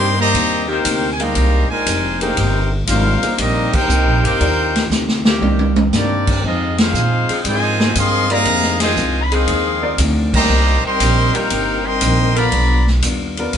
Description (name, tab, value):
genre	jazz, big band swing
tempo	118 BPM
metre	4/4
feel	swing 69% on 8ths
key	C minor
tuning	A4 = 440 Hz
part	clear trumpet section	melody	0.0-12.9 s	C4 to C6	-18 LUFS	equal	none
part	mellow trombone section	second line	0.0-12.9 s	Bb2 to G4	-23 LUFS	equal	none
part	vintage hollow-body jazz guitar	accompaniment	0.0-13.6 s	C3 to A#4	-28 LUFS	left 3 dB	none
part	clear saxophone section	sustained chords	0.0-0.8, 4.2-12.5 s	Eb3 to Bb4	-24 LUFS	left 2 dB	none
part	upright bass	bass	0.0-13.6 s	F1 to Bb2	-18 LUFS	equal	none
part	swinging big-band drum kit	drums	0.3-13.6 s	crash cymbal, hi-hat, kick drum, ride cymbal, snare drum, toms	-20 LUFS	equal	none
part	warm concert grand piano	accompaniment	1.2-13.5 s	G3 to F5	-25 LUFS	equal	none
room	moderate studio reverb, RT60 0.9 s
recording	band playing live in one room, nothing above 10.6 kHz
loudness	-14 LUFS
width	side -8 dB against mid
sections	0.0-13.6 A section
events	band accent 3.6, 6.7, 10.2; drum fill 4.9-5.9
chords	0.0 Cm7; 6.4 Fm7; 10.5 Cm7; 12.5 G7#9